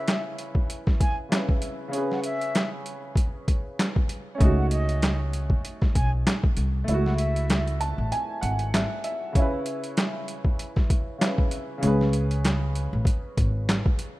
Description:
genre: hip hop, boom-bap hip-hop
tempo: 97 BPM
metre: 4/4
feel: swing 56% on 16ths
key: C# minor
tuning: A4 = 439 Hz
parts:
  - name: breathy concert flute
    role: melody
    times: 0.0-7.6 s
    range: D#5 to G#5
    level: -34 LUFS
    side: equal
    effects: high-pass filter, low-pass filter, digital delay
  - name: clear upright piano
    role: accompaniment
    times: 0.0-14.2 s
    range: C#3 to A5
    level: -31 LUFS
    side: right 1 dB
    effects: high-pass filter, low-pass filter
  - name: boom bap sampler-style drum kit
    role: drums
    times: 0.1-14.1 s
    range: handclaps, hi-hat, kick drum, snare drum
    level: -24 LUFS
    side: equal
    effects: none
  - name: upright bass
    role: bass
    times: 4.4-13.8 s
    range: G#1 to C#2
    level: -24 LUFS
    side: equal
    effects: none
room: studio reverb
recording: rough home demo mix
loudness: -23 LUFS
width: side -18 dB against mid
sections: 0.0-9.3 A section; 9.3-14.2 B section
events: break 6.9-9.3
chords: 0.0 C#m7; 4.4 B7/C# (rootless); 6.9 F#m7; 9.3 C#m7; 11.8 Amaj7 (rootless)

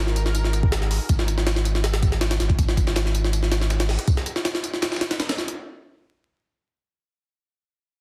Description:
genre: drum and bass, jungle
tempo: 161 BPM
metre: 4/4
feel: straight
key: unclear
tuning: A4 = 440 Hz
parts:
  - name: lush unison pad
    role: sustained chords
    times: 0.0-1.1 s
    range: D#4 to A#4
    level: -37 LUFS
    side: equal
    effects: chorus, phaser
  - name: saturated sub bass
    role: bass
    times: 0.0-4.0 s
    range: G#1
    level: -25 LUFS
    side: equal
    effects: none
  - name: jungle sampler-style drum kit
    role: drums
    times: 0.1-5.6 s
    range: hi-hat, kick drum, snare drum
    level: -25 LUFS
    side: equal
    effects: none
  - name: dusty soul sampler-style drum kit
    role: drums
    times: 0.2-5.5 s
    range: hi-hat, snare drum, tambourine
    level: -38 LUFS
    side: equal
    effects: high-pass filter on perc, high-pass filter on snare, high-pass filter on hats, high-pass filter on room
room: digital ambience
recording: dense, heavily limited modern master, vinyl crackle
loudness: -23 LUFS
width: mono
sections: 0.0-5.6 A section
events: drop 0.0-5.6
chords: 0.0 G#7(no3)

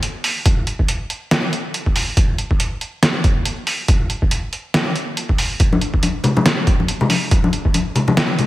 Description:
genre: dubstep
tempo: 140 BPM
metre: 4/4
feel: swing 57% on 16ths, half-time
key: none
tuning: none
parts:
  - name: trip hop sampler-style drum kit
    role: drums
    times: 0.0-8.5 s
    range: hi-hat, snare drum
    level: -19 LUFS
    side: equal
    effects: overdrive, studio reverb
  - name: electronic kick drum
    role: drums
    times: 0.5-7.7 s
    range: none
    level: -17 LUFS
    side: equal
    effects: overdrive, studio reverb
  - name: congas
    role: percussion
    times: 5.7-8.5 s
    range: none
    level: -18 LUFS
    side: left 2 dB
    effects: dub echo
room: light reverb, digital ambience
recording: none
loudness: -16 LUFS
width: side -16 dB against mid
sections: 0.0-8.5 A section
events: none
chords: none

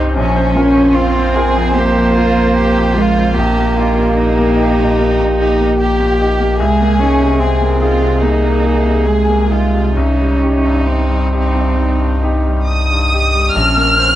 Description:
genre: neoclassical piano and strings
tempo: 64-75 BPM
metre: 4/4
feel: rubato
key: Bb dorian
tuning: A4 = 440 Hz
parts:
  - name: warm chamber violin section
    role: melody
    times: 0.0-14.2 s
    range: Db4 to F6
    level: -18 LUFS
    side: equal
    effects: none
  - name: bright baby grand piano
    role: accompaniment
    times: 0.0-14.2 s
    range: Bb1 to C5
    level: -19 LUFS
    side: left 1 dB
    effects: none
  - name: warm viola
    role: accompaniment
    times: 0.0-14.2 s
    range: Db4 to C5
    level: -21 LUFS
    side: right 1 dB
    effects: none
  - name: soft dub sub bass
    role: bass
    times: 0.0-14.2 s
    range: Bb1 to C2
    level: -16 LUFS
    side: left 1 dB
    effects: none
  - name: dark cello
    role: second line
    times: 0.2-14.2 s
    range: F3 to Db4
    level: -16 LUFS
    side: right 2 dB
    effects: none
room: light reverb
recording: worn, warbling old tape, cassette tape, warbly pitch drift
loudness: -11 LUFS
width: side -13 dB against mid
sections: 0.0-13.5 A section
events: none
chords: 0.2 Bbmadd9; 3.4 Eb/Bb; 6.6 Abadd9/C; 10.0 Cm; 13.5 Bbmadd9

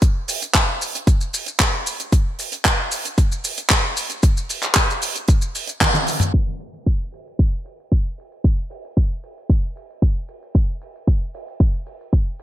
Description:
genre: nu-disco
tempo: 114 BPM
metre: 4/4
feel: straight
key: none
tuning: none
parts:
  - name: damped 70s drum kit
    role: drums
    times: 0.0-12.4 s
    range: handclaps, hi-hat, shaker, toms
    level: -20 LUFS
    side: equal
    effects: low-pass filter on hats, low-pass filter on toms, low-pass filter on snare, low-pass filter on perc, low-pass filter on room, gated reverb
  - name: electronic kick drum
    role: drums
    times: 0.0-12.2 s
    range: none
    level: -17 LUFS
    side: equal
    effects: none
room: light reverb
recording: bright 1980s-style digital production, low-pass filter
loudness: -18 LUFS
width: side -13 dB against mid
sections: 0.0-6.3 A section; 6.3-12.4 B section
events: drum fill 5.8-6.3; band accent 5.8; filter sweep on drum 6.3-12.4; filter sweep 6.3-12.4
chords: none

